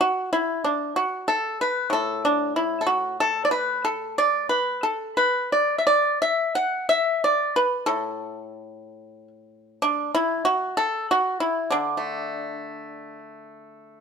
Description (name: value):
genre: chinese traditional, Chinese solo plucked strings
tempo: 58-64 BPM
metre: 2/4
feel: rubato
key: unclear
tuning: A4 = 439 Hz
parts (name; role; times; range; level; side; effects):
- pipa; solo; 0.0-14.0 s; A2 to F#5; -21 LUFS; equal; none
room: moderate stone room reverb, RT60 1.1 s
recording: band playing live in one room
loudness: -21 LUFS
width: side -6 dB against mid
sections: 0.0-13.7 A section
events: none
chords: none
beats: | 0.03 0.98 | 1.92 2.87 | 3.84 4.85 | 5.86 6.88 | 7.88 8.84 | 9.80 10.75 | 11.71 12.71 | 13.73